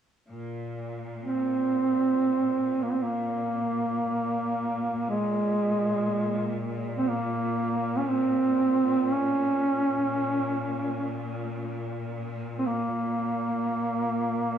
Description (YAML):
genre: caucasian folk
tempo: free time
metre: none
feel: none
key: Bb minor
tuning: A4 = 440 Hz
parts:
  - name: bright studio string section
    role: drone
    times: 0.3-14.6 s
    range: Bb2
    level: -34 LUFS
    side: equal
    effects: cassette tape, plate reverb
  - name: mellow duduk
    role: melody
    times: 1.2-14.6 s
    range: Ab3 to Db4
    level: -25 LUFS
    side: right 1 dB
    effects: plate reverb, tape echo
room: moderate studio reverb, RT60 0.6 s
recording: home recording on cassette, small room ambience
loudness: -25 LUFS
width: side -9 dB against mid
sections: 0.3-14.6 A section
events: none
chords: none